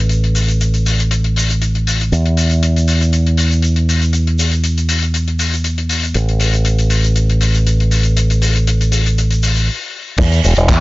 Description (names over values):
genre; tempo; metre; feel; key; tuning
nu-disco, nu disco; 119 BPM; 4/4; swing 53% on 16ths; unclear; A4 = 435 Hz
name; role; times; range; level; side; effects
fingered electric bass with an envelope filter; bass; 0.0-10.8 s; E1 to E2; -13 LUFS; equal; none
damped 70s drum kit; drums; 0.1-10.8 s; crash cymbal, handclaps, hi-hat, shaker; -20 LUFS; left 3 dB; small room reverb
kick drum; drums; 10.2-10.8 s; none; -12 LUFS; equal; small room reverb
room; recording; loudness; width
little or no reverb; dry, gritty hardware recording, nothing above 7.5 kHz; -12 LUFS; side -20 dB against mid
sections
0.0-10.2 A section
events
stop 9.7-10.2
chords
none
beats
| 0.10 0.61 1.11 1.62 | 2.12 2.62 3.13 3.63 | 4.14 4.64 5.15 5.65 | 6.16 6.66 7.16 7.67 | 8.17 8.68 9.18 9.68 | 10.19 10.69